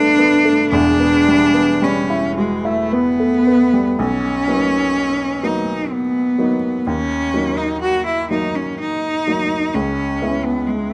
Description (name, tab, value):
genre	classical, impressionist duo for cello and grand piano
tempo	54-66 BPM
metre	3/4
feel	rubato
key	unclear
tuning	A4 = 444 Hz
part	rich cello	melody	0.0-10.9 s	G#3 to F#4	-19 LUFS	equal	none
part	warm baby grand piano	accompaniment	0.0-10.9 s	E1 to F#4	-23 LUFS	equal	none
room	light reverb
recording	close, detailed microphones, vinyl crackle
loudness	-17 LUFS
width	mono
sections	0.0-4.0 A section; 4.0-10.9 B section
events	none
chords	0.0 Gadd9; 0.7 Em; 4.0 Bmaj7; 6.9 D#m; 9.7 C#m7